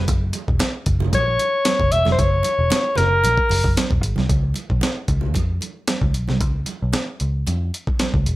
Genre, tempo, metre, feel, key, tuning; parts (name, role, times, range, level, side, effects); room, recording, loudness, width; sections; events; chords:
funk; 114 BPM; 4/4; straight; A4 = 440 Hz
vintage muted picked electric bass; bass; 0.0-8.4 s; Fb1 to F2; -20 LUFS; equal
breakbeat sampler-style drum kit; drums; 0.1-8.4 s; hi-hat, kick drum, snare drum; -22 LUFS; equal
congas; percussion; 0.1-8.1 s; -29 LUFS; right 6 dB
breathy alto saxophone; melody; 1.1-3.8 s; Bb4 to Fb5; -18 LUFS; left 1 dB; slapback echo
light reverb; -17 LUFS; side -17 dB against mid
0.0-4.3 A section; 4.3-8.4 B section
alto saxophone solo 0.0-4.3
0.1 Gb7(no3); 4.3 Db